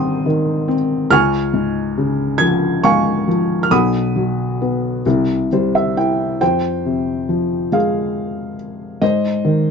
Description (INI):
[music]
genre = classical, lyrical solo piano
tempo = 46 BPM (dotted quarters)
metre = 6/8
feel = rubato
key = F minor from 6.4 s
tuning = A4 = 440 Hz
[part]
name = felt-muted upright piano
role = solo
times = 0.0-9.7 s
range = Ab1 to Ab6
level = -15 LUFS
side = left 1 dB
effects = none
[sound]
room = light reverb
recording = dark, warm production, nothing above 7.6 kHz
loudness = -15 LUFS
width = side -6 dB against mid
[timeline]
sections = 0.0-6.4 A section; 6.4-9.7 B section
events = felt piano fill 5.1-6.4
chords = 0.0 Abmaj7; 1.1 Db; 3.7 B; 5.1 C; 6.4 Fm; 9.0 Ab